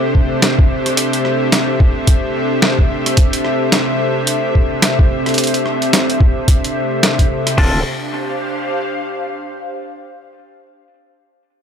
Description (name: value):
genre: glitch hop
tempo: 109 BPM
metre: 4/4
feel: swing 59% on 16ths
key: D minor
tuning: A4 = 441 Hz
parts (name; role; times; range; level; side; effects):
- warbly tape-like pad; sustained chords; 0.0-7.8 s; C3 to A4; -20 LUFS; equal; chorus, built-in reverb, sidechain pumping
- airy breathy pad; texture; 0.0-9.7 s; D4 to F5; -20 LUFS; left 1 dB; chorus, sidechain pumping
- electronic kick drum; drums; 0.1-7.7 s; none; -12 LUFS; equal; none
- boom bap sampler-style drum kit; drums; 0.4-7.7 s; crash cymbal, hi-hat, rim click, snare drum; -17 LUFS; equal; none
- clean electric guitar; stabs; 7.6-7.8 s; C4 to A4; -22 LUFS; left 1 dB; vintage 12-bit sampler grit, sidechain pumping, digital delay
- formant-sweep wobble bass; bass; 7.6-7.8 s; D1; -20 LUFS; equal; chorus
room: light reverb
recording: none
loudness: -13 LUFS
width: side -8 dB against mid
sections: 0.0-7.6 A section; 7.6-9.8 B section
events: none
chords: 0.0 D7(no3); 7.6 Dm7